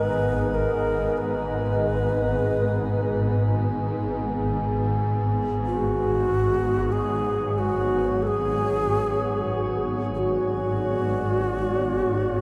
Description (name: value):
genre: dark ambient drone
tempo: free time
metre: none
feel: none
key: unclear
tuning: A4 = 440 Hz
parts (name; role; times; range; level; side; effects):
- long shakuhachi; melody; 0.0-12.4 s; F#4 to B4; -28 LUFS; equal; shimmer reverb, diffuse ambient delay
- deep dark ambient pad; sustained chords; 0.0-12.4 s; B3 to A#5; -31 LUFS; equal; chorus, built-in reverb, shimmer reverb
- swarming drone; drone; 0.0-12.4 s; G#1 to G#2; -29 LUFS; equal; built-in reverb
- metallic inharmonic drone; texture; 0.0-12.4 s; G#4; -37 LUFS; equal; chorus, built-in reverb, shimmer reverb
room: wet cathedral reverb, RT60 5.9 s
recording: dark, warm production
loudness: -24 LUFS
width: mono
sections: 0.0-12.4 A section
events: none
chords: 0.0 G#madd9; 5.0 Bmadd9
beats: free time